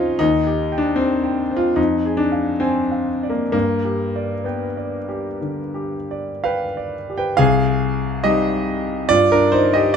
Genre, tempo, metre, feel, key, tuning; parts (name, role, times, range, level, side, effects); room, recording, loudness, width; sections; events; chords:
classical, romantic character piece for solo piano; 55-78 BPM; 4/4; rubato; C minor; A4 = 440 Hz
clear grand piano; solo; 0.0-10.0 s; C2 to Ab5; -17 LUFS; equal
light reverb; dark, warm production; -17 LUFS; side -7 dB against mid
0.0-7.4 A section; 7.4-10.0 B section
0.2 Cm/Eb; 1.8 Ddim/F; 3.5 G; 7.4 Cm